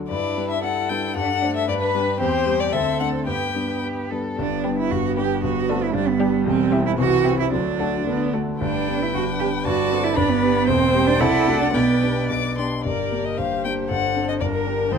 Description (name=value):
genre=quick classical-period movement for piano quintet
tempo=107-119 BPM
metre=2/4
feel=rubato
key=G major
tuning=A4 = 440 Hz
part: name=clear concert grand piano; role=accompaniment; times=0.0-15.0 s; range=E1 to C5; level=-24 LUFS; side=left 3 dB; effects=none
part: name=warm violin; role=melody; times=0.1-15.0 s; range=Bb4 to D6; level=-26 LUFS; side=left 8 dB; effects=none
part: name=rich cello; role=second line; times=0.1-15.0 s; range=B3 to B4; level=-24 LUFS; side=right 9 dB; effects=none
part: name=rich violin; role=second line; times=0.1-15.0 s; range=G4 to D5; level=-30 LUFS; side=left 3 dB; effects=none
part: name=warm viola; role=accompaniment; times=0.1-15.0 s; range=E3 to D5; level=-28 LUFS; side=right 4 dB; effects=none
room=light reverb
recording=close, detailed microphones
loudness=-19 LUFS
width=side -6 dB against mid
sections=0.0-4.4 A section; 4.4-12.8 B section; 12.8-15.0 B section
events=none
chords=0.1 G; 1.2 D7/G; 1.7 G; 2.2 C/E; 2.7 D7(no3); 3.3 G; 5.4 D7/G; 5.9 G; 6.5 C/E; 7.0 C; 7.5 D; 8.6 G; 9.7 D7/G; 10.2 G; 10.7 C/E; 11.2 D7/C; 11.7 G/B; 12.8 Gm; 13.9 D7/G; 14.4 Gm